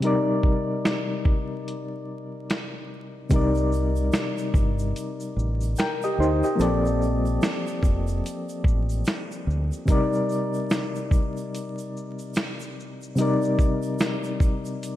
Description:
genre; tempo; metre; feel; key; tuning
lo-fi hip hop; 73 BPM; 4/4; swing 61% on 16ths; C dorian; A4 = 441 Hz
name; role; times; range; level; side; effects
soft electric-piano-like synth keys; accompaniment; 0.0-15.0 s; C3 to G5; -25 LUFS; left 1 dB; chorus, tremolo
dusty soul sampler-style drum kit; drums; 0.0-15.0 s; finger snaps, hi-hat, kick drum, shaker, snare drum; -24 LUFS; equal; none
deep dub fingered electric bass; bass; 3.3-9.7 s; F1 to D2; -25 LUFS; equal; none
tube shaker; percussion; 3.3-15.0 s; none; -48 LUFS; right 11 dB; none
room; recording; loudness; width
moderate plate reverb, RT60 2.1 s; dreamy mix soaked in reverb, vinyl crackle; -22 LUFS; side -13 dB against mid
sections
0.0-3.3 A section; 3.3-15.0 A section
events
break 0.0-3.3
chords
0.0 Cm9; 3.3 Cm7; 6.6 Bbmaj7; 9.9 Cm9

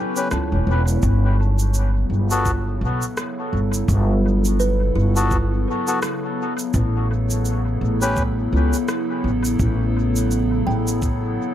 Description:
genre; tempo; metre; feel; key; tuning
ambient dub; 84 BPM; 4/4; swing 58% on 16ths; unclear; A4 = 440 Hz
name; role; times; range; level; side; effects
warbly tape-like pad; sustained chords; 0.0-11.5 s; C#3 to A4; -25 LUFS; left 1 dB; chorus, built-in reverb, phaser
kalimba; arpeggios; 0.0-11.5 s; E4 to A5; -32 LUFS; right 4 dB; dub echo
bubbling stepped-filter texture; texture; 0.0-1.0 s; C#4 to C#5; -34 LUFS; right 2 dB; chorus, built-in reverb
melodica; stabs; 0.2-8.2 s; B3 to B4; -27 LUFS; left 2 dB; dub echo
electronic shaker and rim click; drums; 0.2-11.2 s; none; -31 LUFS; right 1 dB; dub echo
upright bass; bass; 0.3-11.4 s; E1 to C#2; -19 LUFS; equal; none
electronic kick drum; drums; 1.0-11.2 s; none; -23 LUFS; equal; none
room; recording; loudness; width
light reverb; none; -18 LUFS; side -11 dB against mid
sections
0.0-1.0 A section; 1.0-11.5 B section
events
none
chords
0.0 Aadd9; 1.0 Gmaj7; 6.7 A9

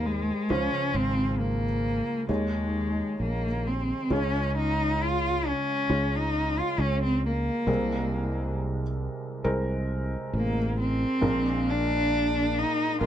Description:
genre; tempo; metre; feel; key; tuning
acoustic folk-pop ballad; 67 BPM; 4/4; straight; unclear; A4 = 440 Hz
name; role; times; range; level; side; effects
warm cello; melody; 0.0-13.1 s; Ab3 to F4; -27 LUFS; equal; none
felt-muted upright piano; accompaniment; 0.0-13.1 s; Ab1 to Db5; -32 LUFS; right 1 dB; none
sustaining fretless electric bass; bass; 0.0-13.1 s; Ab1 to Eb2; -29 LUFS; equal; none
room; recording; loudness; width
light reverb; dark, warm production; -24 LUFS; side -10 dB against mid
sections
0.0-4.1 A section; 4.1-13.1 B section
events
none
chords
0.0 Abmaj9; 0.5 Dbmaj7; 2.3 Eb7sus4; 4.1 Db; 7.7 Abadd9/C; 11.2 Bb7

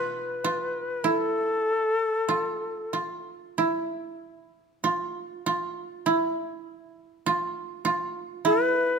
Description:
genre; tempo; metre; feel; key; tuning
japanese traditional, Japanese chamber music; 47-51 BPM; 2/4; rubato; unclear; A4 = 442 Hz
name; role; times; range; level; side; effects
breathy bright shakuhachi; melody; 0.0-2.9, 8.5-9.0 s; A4 to B4; -25 LUFS; left 2 dB; none
koto; second line; 0.0-9.0 s; E4 to F4; -27 LUFS; right 3 dB; none
koto; accompaniment; 0.0-2.0 s; B2; -56 LUFS; left 4 dB; none
room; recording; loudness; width
moderate recital hall reverb, RT60 1.7 s; close, detailed microphones; -25 LUFS; side -5 dB against mid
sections
0.0-9.0 A section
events
none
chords
none

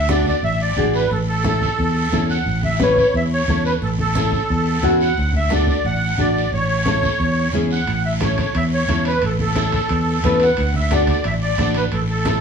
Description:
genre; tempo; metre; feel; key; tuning
latin, cumbia; 178 BPM; 4/4; straight; A major; A4 = 440 Hz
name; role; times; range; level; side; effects
musette accordion; melody; 0.0-12.4 s; A4 to F#5; -22 LUFS; right 1 dB; none
fingered electric bass; bass; 0.0-12.4 s; A1 to E2; -20 LUFS; equal; none
nylon-string guitar; accompaniment; 0.1-12.4 s; C#4 to B4; -21 LUFS; left 1 dB; none
congas; percussion; 0.1-12.4 s; none; -26 LUFS; right 1 dB; none
guiro; percussion; 0.1-12.4 s; none; -31 LUFS; right 3 dB; none
timbales; percussion; 7.9-12.4 s; none; -31 LUFS; right 3 dB; none
room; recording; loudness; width
wet stone room reverb, RT60 1.0 s; band playing live in one room, small room ambience; -16 LUFS; side -6 dB against mid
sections
0.0-12.4 A section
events
none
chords
0.0 D; 1.1 A; 5.2 D; 6.5 A; 10.6 D

